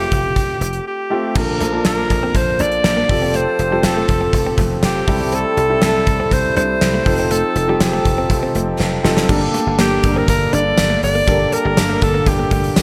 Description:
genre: 1980s-style pop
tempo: 121 BPM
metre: 4/4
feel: straight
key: G minor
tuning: A4 = 440 Hz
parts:
  - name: bright alto saxophone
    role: melody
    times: 0.0-12.8 s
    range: G4 to D5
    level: -22 LUFS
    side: equal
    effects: none
  - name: warm concert grand piano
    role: accompaniment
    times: 0.0-12.8 s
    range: A3 to A5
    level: -24 LUFS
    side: equal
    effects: none
  - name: dry thumbed slap bass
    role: bass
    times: 0.0-12.8 s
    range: F1 to C2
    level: -24 LUFS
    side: equal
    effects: none
  - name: gated 80s drum kit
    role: drums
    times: 0.1-12.8 s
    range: crash cymbal, hi-hat, kick drum, snare drum, tambourine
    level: -21 LUFS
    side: equal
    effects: none
  - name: hand-pumped harmonium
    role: sustained chords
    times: 1.4-12.8 s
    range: C3 to A4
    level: -29 LUFS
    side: equal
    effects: none
  - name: direct-recorded clean electric guitar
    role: riff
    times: 1.4-12.8 s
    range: G3 to D4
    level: -29 LUFS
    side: equal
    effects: none
  - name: mellow synth brass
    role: stabs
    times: 9.3-12.2 s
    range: D3 to Bb4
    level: -29 LUFS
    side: equal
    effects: none
room: moderate lush hall reverb, RT60 1.9 s, small room ambience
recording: dark, warm production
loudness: -16 LUFS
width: mono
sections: 0.0-1.4 A section; 1.4-9.3 B section; 9.3-12.8 C section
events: drum fill 8.8-9.3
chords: 0.0 Fadd9; 1.4 Bbmaj7; 3.1 Fadd9; 5.1 C6; 7.1 F7; 9.3 Gmadd9

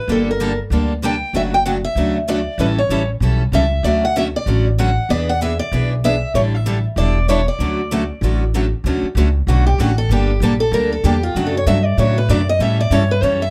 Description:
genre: acoustic string swing (jazz manouche)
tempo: 192 BPM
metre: 4/4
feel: swing 60% on 8ths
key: D major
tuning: A4 = 442 Hz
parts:
  - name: picked steel-string acoustic guitar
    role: melody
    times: 0.0-13.5 s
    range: F4 to G5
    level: -22 LUFS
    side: equal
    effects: none
  - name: picked steel-string acoustic guitar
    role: accompaniment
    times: 0.1-13.4 s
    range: C#3 to A4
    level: -24 LUFS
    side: equal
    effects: none
  - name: picked steel-string acoustic guitar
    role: accompaniment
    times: 0.1-13.4 s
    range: D3 to C#5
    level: -29 LUFS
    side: equal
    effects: none
  - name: upright bass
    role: bass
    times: 0.1-13.5 s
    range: E1 to A2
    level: -20 LUFS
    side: equal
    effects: none
room: light reverb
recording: none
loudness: -17 LUFS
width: mono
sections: 0.0-8.8 A section; 8.8-13.5 B section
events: steel-string acoustic guitar solo 8.8-13.5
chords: 0.1 Gmadd9; 1.3 Dmaj9/F#; 2.6 A7; 3.8 Dmaj7; 5.1 E7; 6.3 A7sus4; 7.6 Dmaj7; 10.1 Gmadd9; 11.3 Dmaj7/F#; 12.6 A7

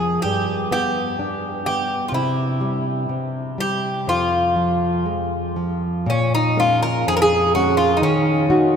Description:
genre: fado-style ballad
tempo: 59-64 BPM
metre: 2/4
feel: rubato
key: F harmonic minor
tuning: A4 = 440 Hz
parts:
  - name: Greek bouzouki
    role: melody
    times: 0.0-8.8 s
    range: Db4 to Bb4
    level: -20 LUFS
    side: equal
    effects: none
  - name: nylon-string guitar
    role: accompaniment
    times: 0.0-8.8 s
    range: F2 to Gb4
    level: -21 LUFS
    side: left 1 dB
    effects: none
room: wet cathedral reverb, RT60 6.4 s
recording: in a vast, echoing space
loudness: -18 LUFS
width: side -7 dB against mid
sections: 0.0-6.1 A section; 6.1-8.8 B section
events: none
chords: 0.2 G; 2.1 C; 4.1 Fm; 6.1 Bbm7; 8.0 Ebm

